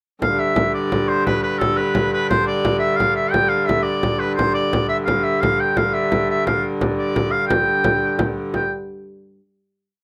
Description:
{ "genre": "medieval dance", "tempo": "115 BPM (dotted quarters)", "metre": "6/8", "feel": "straight", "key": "G mixolydian", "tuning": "A4 = 440 Hz", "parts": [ { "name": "bright shawm", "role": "melody", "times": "0.2-8.7 s", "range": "A4 to G5", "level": "-23 LUFS", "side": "equal", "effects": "none" }, { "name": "warm hurdy-gurdy", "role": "drone", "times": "0.2-8.6 s", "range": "G2 to D3", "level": "-24 LUFS", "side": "equal", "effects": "none" }, { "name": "frame drum", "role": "percussion", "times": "0.2-8.7 s", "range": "none", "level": "-25 LUFS", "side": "equal", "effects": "none" } ], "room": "wet studio reverb, RT60 0.6 s", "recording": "rough home demo mix", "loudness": "-19 LUFS", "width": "mono", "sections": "0.2-8.6 A section; 8.6-9.6 final note", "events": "none", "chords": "none", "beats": "| 0.23 0.75 | 1.27 1.79 | 2.31 2.83 | 3.35 3.88 | 4.40 4.92 | 5.44 5.96 | 6.48 7.00 | 7.52 8.04 | 8.56" }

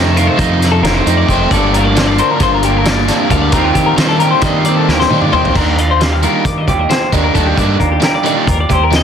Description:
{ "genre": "math rock and midwest emo", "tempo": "267 BPM (eighths)", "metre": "9/8", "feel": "straight", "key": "unclear", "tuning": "A4 = 440 Hz", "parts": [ { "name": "electric guitar through a small old amp", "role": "accompaniment", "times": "0.0-9.0 s", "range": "F2 to Bb4", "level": "-18 LUFS", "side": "right 10 dB", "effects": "none" }, { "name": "clean electric guitar", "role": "arpeggios", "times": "0.0-9.0 s", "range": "F4 to F5", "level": "-17 LUFS", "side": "left 8 dB", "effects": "spring reverb" }, { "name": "overdriven electric guitar", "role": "riff", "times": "0.0-8.9 s", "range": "F2 to Eb4", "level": "-16 LUFS", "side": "equal", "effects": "none" }, { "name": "growling fingered electric bass", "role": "bass", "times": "0.0-9.0 s", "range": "F1 to Eb3", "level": "-16 LUFS", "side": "equal", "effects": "overdrive" }, { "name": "loose indie drum kit", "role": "drums", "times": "0.2-9.0 s", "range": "crash cymbal, hi-hat, kick drum, snare drum, toms", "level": "-17 LUFS", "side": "equal", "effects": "soft clipping on kick" } ], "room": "light reverb", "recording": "dense, heavily limited modern master", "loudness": "-10 LUFS", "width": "side -8 dB against mid", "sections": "0.0-5.5 A section; 5.5-9.0 B section", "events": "drum fill 4.9-5.5", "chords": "0.0 F9sus4; 1.5 Gm9; 3.5 Eb69", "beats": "0.16 0.39 0.61 0.83 1.06 1.28 | 1.51 1.73 1.96 2.18 2.41 2.63 2.85 3.08 3.30 | 3.53 3.75 3.98 4.20 4.43 4.65 4.88 5.10 5.33 | 5.55 5.78 6.00 6.22 6.45 6.67 6.90 7.12 7.35 | 7.58 7.80 8.03 8.25 8.47 8.70 8.93" }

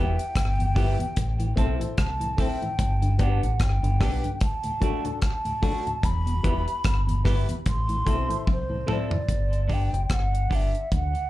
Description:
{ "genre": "roots reggae", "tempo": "74 BPM", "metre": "4/4", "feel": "swing 57% on 16ths", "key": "G major", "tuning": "A4 = 438 Hz", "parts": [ { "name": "mellow hollow concert flute", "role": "melody", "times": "0.0-11.3 s", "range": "C5 to C6", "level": "-31 LUFS", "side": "equal", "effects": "tape echo, slapback echo" }, { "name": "mellow tonewheel organ", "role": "accompaniment", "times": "0.0-9.2 s", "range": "D2 to E4", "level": "-32 LUFS", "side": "left 1 dB", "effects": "overdrive, chorus vibrato, slow rotary speaker, slapback echo" }, { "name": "semi-hollow electric guitar", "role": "accompaniment", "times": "0.0-10.7 s", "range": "A3 to A4", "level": "-37 LUFS", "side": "right 2 dB", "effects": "tape echo, slapback echo" }, { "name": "dark grand piano", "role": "stabs", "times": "0.0-9.1 s", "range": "D4 to C5", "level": "-35 LUFS", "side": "left 7 dB", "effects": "slapback echo" }, { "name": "deep dub fingered electric bass", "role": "bass", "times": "0.0-11.1 s", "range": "E1 to D2", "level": "-25 LUFS", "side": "equal", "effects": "none" }, { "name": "deep reggae drum kit", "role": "drums", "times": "0.2-11.3 s", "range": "hi-hat, kick drum, rim click, toms", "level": "-26 LUFS", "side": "equal", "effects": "none" } ], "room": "little or no reverb", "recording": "live gig heard through the venue's PA, club reverb", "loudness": "-22 LUFS", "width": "side -16 dB against mid", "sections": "0.0-9.3 A section; 9.3-11.3 B section", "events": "drum fill 8.5-9.3", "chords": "0.0 Em; 1.2 Am; 2.8 G; 4.4 D; 6.0 Em; 7.7 Am; 9.3 G", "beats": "0.35 1.16 1.97 | 2.79 3.60 4.41 5.22 | 6.03 6.84 7.66 8.47 | 9.28 10.10 10.91" }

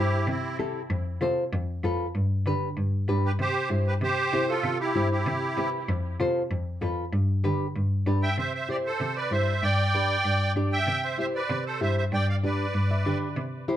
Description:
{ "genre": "latin, cumbia", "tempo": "193 BPM", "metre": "4/4", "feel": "straight", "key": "C major", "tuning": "A4 = 440 Hz", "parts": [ { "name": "musette accordion", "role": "melody", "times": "0.0-0.6, 3.2-5.7, 8.2-13.2 s", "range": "C4 to G5", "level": "-28 LUFS", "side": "right 2 dB", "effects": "analog delay" }, { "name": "nylon-string guitar", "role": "accompaniment", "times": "0.0-13.8 s", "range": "D4 to E5", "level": "-29 LUFS", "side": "left 1 dB", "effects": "none" }, { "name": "bright cello", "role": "bass", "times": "0.0-13.8 s", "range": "F2 to D3", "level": "-27 LUFS", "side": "equal", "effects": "none" } ], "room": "moderate small room reverb, RT60 0.5 s", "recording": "heard from further back in the room", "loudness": "-24 LUFS", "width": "side -11 dB against mid", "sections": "0.0-8.4 A section; 8.4-13.8 B section", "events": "nylon-string guitar fill 12.7-13.4", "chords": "0.0 C; 0.9 F; 2.2 G; 3.4 C; 5.9 F; 7.1 G; 8.4 C; 9.6 G; 10.9 C; 12.1 G", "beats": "0.28 0.59 | 0.91 1.22 1.53 1.84 | 2.15 2.46 2.77 3.09 | 3.40 3.71 4.02 4.33 | 4.64 4.96 5.27 5.58 | 5.89 6.20 6.51 6.82 | 7.13 7.45 7.76 8.07 | 8.38 8.69 9.00 9.32 | 9.63 9.94 10.25 10.56 | 10.88 11.19 11.50 11.81 | 12.12 12.44 12.75 13.06 | 13.37 13.68" }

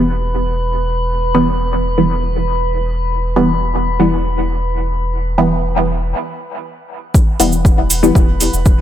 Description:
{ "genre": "dub techno", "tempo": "119 BPM", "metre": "4/4", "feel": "straight", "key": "E minor", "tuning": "A4 = 442 Hz", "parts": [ { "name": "filtered dub chord stab", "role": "stabs", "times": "0.0-8.1 s", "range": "E3 to B3", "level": "-16 LUFS", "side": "equal", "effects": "chorus, phaser, sidechain pumping, dub echo" }, { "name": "soft dub sub bass", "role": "bass", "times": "0.0-8.8 s", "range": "E1", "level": "-19 LUFS", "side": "equal", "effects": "sidechain pumping" }, { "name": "drifting glass-harmonics texture", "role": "texture", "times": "0.0-8.8 s", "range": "B4", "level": "-23 LUFS", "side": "left 1 dB", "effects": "chorus, built-in reverb, sidechain pumping" }, { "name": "electronic kick drum", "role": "drums", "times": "7.1-8.8 s", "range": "none", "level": "-10 LUFS", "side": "equal", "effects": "none" }, { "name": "cabasa", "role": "percussion", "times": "7.1-8.8 s", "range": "none", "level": "-19 LUFS", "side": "right 4 dB", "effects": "none" }, { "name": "electronic hi-hat", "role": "drums", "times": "7.4-8.5 s", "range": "none", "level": "-22 LUFS", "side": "right 3 dB", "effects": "low-pass filter on hats" } ], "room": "light reverb, digital ambience", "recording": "none", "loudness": "-13 LUFS", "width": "side -11 dB against mid", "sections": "0.0-7.1 A section; 7.1-8.8 B section", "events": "break 6.1-7.1", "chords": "0.0 Em", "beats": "0.09 0.59 | 1.09 1.60 2.10 2.61 | 3.11 3.62 4.12 4.62 | 5.13 5.63 6.14 6.64 | 7.14 7.65 8.15 8.66" }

